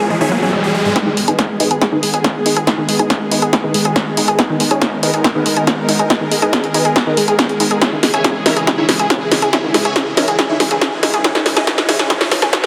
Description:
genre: uplifting trance.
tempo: 140 BPM.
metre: 4/4.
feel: straight.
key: G# minor.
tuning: A4 = 440 Hz.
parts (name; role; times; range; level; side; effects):
supersaw chords; melody; 0.0-12.7 s; B3 to A#5; -23 LUFS; equal; phaser, sidechain pumping, low-pass filter, dub echo.
supersaw pad; sustained chords; 0.0-12.7 s; C#3 to A#4; -24 LUFS; equal; sidechain pumping.
analog pluck; arpeggios; 0.0-12.6 s; G#2 to G#4; -22 LUFS; equal; chorus, sidechain pumping, dub echo.
riser; sound effects; 0.0-1.0, 8.8-12.7 s; none; -25 LUFS; equal; none.
electronic kick drum; drums; 1.0-12.6 s; none; -23 LUFS; equal; distortion, overdrive, high-pass filter on kick.
punchy analog drum machine; drums; 1.0-12.7 s; hi-hat, snare drum; -19 LUFS; equal; none.
plucky analog bass; bass; 1.1-12.5 s; D#1 to G#2; -29 LUFS; equal; none.
room: moderate lush hall reverb, RT60 1.8 s, digital ambience.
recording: heavily compressed radio sound, high-pass filter.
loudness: -15 LUFS.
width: mono.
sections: 1.0-12.7 A section.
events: riser 0.0-1.0, 8.8-12.7; build-up 1.0-12.7; drum fill 1.0-12.7; filter sweep on supersaw synth 1.0-12.7; filter sweep on synth arpeggio sound 1.0-12.7.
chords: 0.0 C#m (rootless); 1.0 G#m; 7.8 C#m.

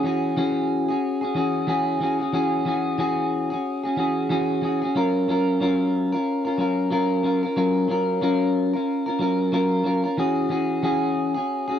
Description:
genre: indie pop.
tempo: 92 BPM.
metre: 4/4.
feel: swing 60% on 16ths.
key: unclear.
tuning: A4 = 439 Hz.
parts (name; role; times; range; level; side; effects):
clean electric guitar; solo; 0.0-11.8 s; E3 to A#4; -20 LUFS; equal; lush chorus, vibrato effect.
room: moderate booth ambience, RT60 0.2 s.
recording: dry, close 1970s-style studio recording.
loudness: -20 LUFS.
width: side -9 dB against mid.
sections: 0.0-11.8 A section.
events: none.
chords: 0.0 E69; 5.0 F#maj7; 10.2 E69.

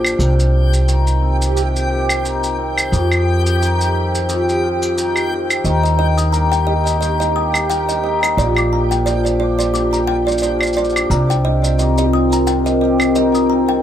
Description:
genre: folktronica.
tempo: 88 BPM.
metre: 4/4.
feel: swing 56% on 16ths.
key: unclear.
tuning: A4 = 442 Hz.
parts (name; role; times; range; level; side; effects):
warbly tape-like pad; sustained chords; 1.0-13.8 s; C4 to F5; -22 LUFS; left 2 dB; chorus, built-in reverb.
cimbalom; arpeggios; 0.0-13.8 s; F2 to G4; -20 LUFS; left 2 dB; low-pass filter, ping-pong delay.
upright bass; bass; 0.0-13.8 s; Bb1 to F2; -18 LUFS; equal; tube saturation.
claves and shaker; drums; 0.0-13.5 s; none; -22 LUFS; right 1 dB; none.
backwards swelling texture; texture; 0.0-13.8 s; G4 to G5; -25 LUFS; right 1 dB; built-in reverb.
kalimba; second line; 5.7-13.8 s; D5 to Eb6; -21 LUFS; right 2 dB; digital delay.
room: light reverb.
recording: none.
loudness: -14 LUFS.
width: side -10 dB against mid.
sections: 0.0-13.8 A section.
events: filter sweep on ambient pad 0.0-13.8.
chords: 0.2 Cm7; 2.9 F5; 5.7 Eb; 8.4 Bbadd9; 11.1 Cm7.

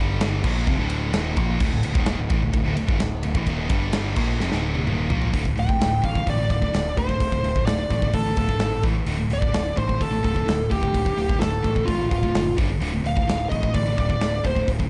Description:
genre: heavy metal.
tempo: 128 BPM.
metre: 4/4.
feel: straight.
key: D phrygian.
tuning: A4 = 440 Hz.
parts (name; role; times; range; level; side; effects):
scooped high-gain guitar; riff; 0.0-14.9 s; D2 to Bb3; -31 LUFS; equal; distortion.
sludgy distorted guitar; riff; 0.0-14.9 s; D2 to Bb3; -30 LUFS; equal; overdrive.
growling picked electric bass; bass; 0.0-14.9 s; D1 to Bb1; -30 LUFS; equal; overdrive.
big rock drum kit; drums; 0.2-14.9 s; crash cymbal, hi-hat, kick drum, ride cymbal, snare drum, toms; -27 LUFS; equal; none.
high-gain lead guitar; melody; 5.6-14.7 s; F4 to G5; -28 LUFS; equal; distortion.
room: small room ambience.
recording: dark, warm production, nothing above 10.7 kHz.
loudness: -23 LUFS.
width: mono.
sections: 0.0-5.3 A section; 5.3-14.9 B section.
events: drum fill 4.4-5.3.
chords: 0.4 Dm; 3.7 G5; 4.2 Dm; 5.3 D5; 8.8 A5; 9.1 D5; 12.6 G5; 12.8 Dm.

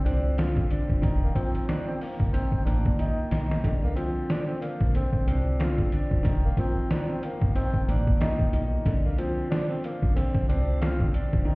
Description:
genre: hip hop, boom-bap hip-hop.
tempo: 92 BPM.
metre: 4/4.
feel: swing 59% on 16ths.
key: unclear.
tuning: A4 = 442 Hz.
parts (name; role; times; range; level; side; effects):
breathy tenor saxophone; melody; 0.0-11.1 s; Bb3 to F4; -34 LUFS; equal; digital delay.
clear upright piano; accompaniment; 0.0-11.6 s; D3 to Eb4; -30 LUFS; equal; none.
round analog bass; bass; 0.1-11.4 s; E1 to C2; -26 LUFS; equal; none.
trip hop sampler-style drum kit; drums; 0.1-11.5 s; hi-hat, kick drum, snare drum; -26 LUFS; equal; overdrive.
room: small room ambience.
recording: heard muffled through a wall, stone room reverb, EQ.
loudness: -23 LUFS.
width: side -24 dB against mid.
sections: 0.0-11.6 A section.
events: drum fill 3.0-3.6.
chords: 0.0 Csus4; 1.0 F7sus4; 3.6 Csus4; 6.2 F7sus4; 8.9 Csus4.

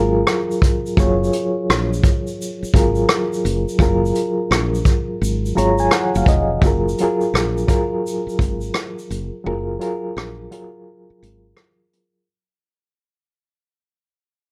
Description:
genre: lo-fi hip hop.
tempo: 85 BPM.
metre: 4/4.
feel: swing 64% on 16ths.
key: Gb major.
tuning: A4 = 437 Hz.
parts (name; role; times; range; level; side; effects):
reed electric piano; accompaniment; 0.0-12.3 s; Gb3 to Bb5; -22 LUFS; equal; fast tremolo.
woody fretless electric bass; bass; 0.0-11.5 s; F1 to Bb1; -24 LUFS; equal; none.
vintage brush drum kit; drums; 0.3-12.1 s; hi-hat, kick drum, rim click, shaker; -21 LUFS; equal; none.
room: light reverb.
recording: none.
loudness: -19 LUFS.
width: mono.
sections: 0.0-6.6 A section; 6.6-12.3 B section.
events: fade-out 6.6-12.3; break 9.4-12.3.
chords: 0.0 Gbmaj9.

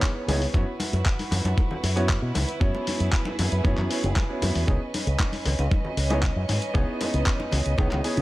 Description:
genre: nu-disco, nu disco.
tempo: 116 BPM.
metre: 4/4.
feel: straight.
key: C# minor.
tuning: A4 = 440 Hz.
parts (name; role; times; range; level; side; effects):
warm grand piano; accompaniment; 0.0-8.2 s; B3 to C#5; -30 LUFS; right 1 dB; sidechain pumping, tape echo.
warm chamber violin section; sustained chords; 0.0-8.2 s; C#4 to D#5; -32 LUFS; right 2 dB; sidechain pumping.
dusty soul sampler-style drum kit; drums; 0.0-8.2 s; handclaps, hi-hat; -31 LUFS; left 1 dB; studio ambience.
electronic kick drum; drums; 0.0-7.9 s; none; -23 LUFS; equal; studio ambience.
congas; percussion; 0.0-8.2 s; none; -33 LUFS; left 2 dB; none.
fingered electric bass with an envelope filter; bass; 0.3-8.2 s; F#1 to C#3; -25 LUFS; equal; none.
room: little or no reverb.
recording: none.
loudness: -22 LUFS.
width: side -17 dB against mid.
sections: 0.0-8.2 A section.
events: none.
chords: 0.0 C#m9; 0.5 F#7sus4; 4.7 C#m9.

